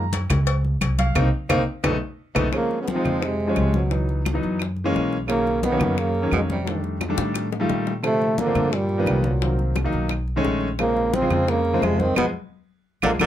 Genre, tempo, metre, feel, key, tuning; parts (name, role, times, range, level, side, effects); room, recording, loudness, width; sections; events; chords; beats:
Afro-Cuban jazz; 174 BPM; 4/4; straight; A4 = 439 Hz
warm baby grand piano; accompaniment; 0.0-13.3 s; Db3 to Bb5; -25 LUFS; left 1 dB
upright bass; bass; 0.0-13.3 s; Bb1 to Bb2; -25 LUFS; equal
congas; percussion; 0.1-13.3 s; -28 LUFS; left 2 dB
cowbell and bongos; percussion; 0.1-13.3 s; -31 LUFS; left 7 dB
claves; percussion; 0.3-13.3 s; -29 LUFS; right 5 dB
breathy tenor saxophone; second line; 2.5-13.3 s; A#2 to F3; -28 LUFS; right 4 dB
mellow trombone; melody; 2.6-13.3 s; Gb3 to C4; -23 LUFS; right 1 dB
light reverb; close, detailed microphones; -20 LUFS; side -11 dB against mid
0.0-2.5 A section; 2.5-13.3 B section
grand piano solo 0.0-2.5; drum fill 1.2-2.5, 7.0-8.0, 13.0; band accent 1.2-2.5, 12.2-13.3
0.0 Gbmaj7(no3); 1.2 Cm7; 1.8 B7; 2.5 Dbmaj9; 3.9 Dbm11; 4.6 Gb7; 5.3 Bmaj9; 6.7 F13; 8.0 Bbmaj9; 8.7 G7alt; 9.4 Cm7b5; 10.1 B13; 10.8 Bbm9; 12.2 Fdim
0.13 0.47 0.81 | 1.16 1.50 1.84 2.19 | 2.53 2.88 3.22 3.56 | 3.91 4.25 4.60 4.94 | 5.29 5.63 5.98 6.32 | 6.67 7.01 7.35 7.70 | 8.04 8.39 8.73 9.07 | 9.42 9.76 10.11 10.45 | 10.79 11.14 11.48 11.83 | 12.17 12.52 12.86 13.20